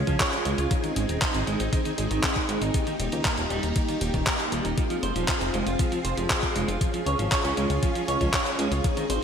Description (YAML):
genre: italo disco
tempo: 118 BPM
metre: 4/4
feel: straight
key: unclear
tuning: A4 = 441 Hz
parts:
  - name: string machine, full ensemble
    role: sustained chords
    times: 0.0-9.2 s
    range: Bb3 to Ab4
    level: -29 LUFS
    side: equal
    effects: phaser, ensemble chorus
  - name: clean electric guitar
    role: arpeggios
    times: 0.0-9.2 s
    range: Eb3 to Db5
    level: -30 LUFS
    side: right 3 dB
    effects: vintage 12-bit sampler grit, low-pass filter, digital delay
  - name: chorused synth bass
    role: bass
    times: 0.0-9.2 s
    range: Eb1 to Db2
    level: -30 LUFS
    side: equal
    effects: none
  - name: clean 12-bit digital drum machine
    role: drums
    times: 0.1-9.2 s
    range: handclaps, hi-hat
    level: -29 LUFS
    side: equal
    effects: gated reverb
  - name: electronic kick drum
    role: drums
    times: 0.1-8.9 s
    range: none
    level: -27 LUFS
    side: equal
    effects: none
room: wet lush hall reverb, RT60 1.8 s, digital ambience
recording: bright 1980s-style digital production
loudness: -23 LUFS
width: side -7 dB against mid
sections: 0.0-9.2 A section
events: none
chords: 0.0 Db; 0.7 Ab; 2.7 Eb; 4.8 Fm; 6.8 Db